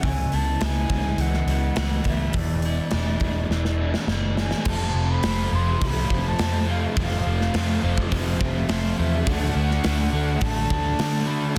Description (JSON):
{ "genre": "rock, shoegaze and dream pop", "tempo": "104 BPM", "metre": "4/4", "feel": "straight", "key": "unclear", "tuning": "A4 = 440 Hz", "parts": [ { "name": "mellow concert flute", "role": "melody", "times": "0.0-11.6 s", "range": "D5 to C6", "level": "-34 LUFS", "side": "equal", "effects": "tape echo" }, { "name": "electric guitar through a small old amp", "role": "arpeggios", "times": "0.0-4.7 s", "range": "E3 to G#4", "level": "-40 LUFS", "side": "equal", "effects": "ensemble chorus, tape echo" }, { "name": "crunchy overdriven guitar", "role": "riff", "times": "0.0-11.6 s", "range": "E2 to F#4", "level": "-32 LUFS", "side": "equal", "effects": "subtle chorus" }, { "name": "overdriven semi-hollow guitar", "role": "riff", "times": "0.0-11.6 s", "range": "E2 to F#4", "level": "-33 LUFS", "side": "equal", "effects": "reverse reverb" }, { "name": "vintage muted picked electric bass", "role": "bass", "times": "0.0-11.4 s", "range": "E1 to D3", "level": "-27 LUFS", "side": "equal", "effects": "none" }, { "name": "gated 80s drum kit", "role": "drums", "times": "0.0-11.6 s", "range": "crash cymbal, hi-hat, kick drum, snare drum", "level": "-29 LUFS", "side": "equal", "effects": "none" }, { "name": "sludgy distorted guitar", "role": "riff", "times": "4.6-11.6 s", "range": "F2 to D4", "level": "-34 LUFS", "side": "equal", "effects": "overdrive" } ], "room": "studio ambience", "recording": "dense, heavily limited modern master", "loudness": "-23 LUFS", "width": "mono", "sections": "0.0-4.7 A section; 4.7-11.6 B section", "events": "drum fill 3.5-4.7", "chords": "0.0 C#m7; 2.4 E7; 4.7 F; 9.3 D" }